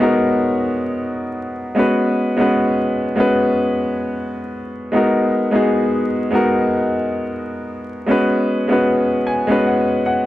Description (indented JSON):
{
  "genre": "hip hop",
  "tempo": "76 BPM",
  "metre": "4/4",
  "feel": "swing 55% on 16ths",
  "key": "G# minor",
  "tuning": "A4 = 440 Hz",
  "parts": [
    { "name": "clear upright piano", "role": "solo", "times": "0.0-10.3 s", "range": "G#3 to G#5", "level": "-16 LUFS", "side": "equal", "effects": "low-pass filter, analog delay" }
  ],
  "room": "wet small room reverb, RT60 0.6 s",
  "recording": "vinyl crackle",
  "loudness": "-15 LUFS",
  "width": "side -15 dB against mid",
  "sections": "0.0-10.3 A section",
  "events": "upright piano fill 8.9-10.3",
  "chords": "0.0 G#m9; 1.8 C#7sus4; 4.9 G#m9; 8.1 C#7sus4"
}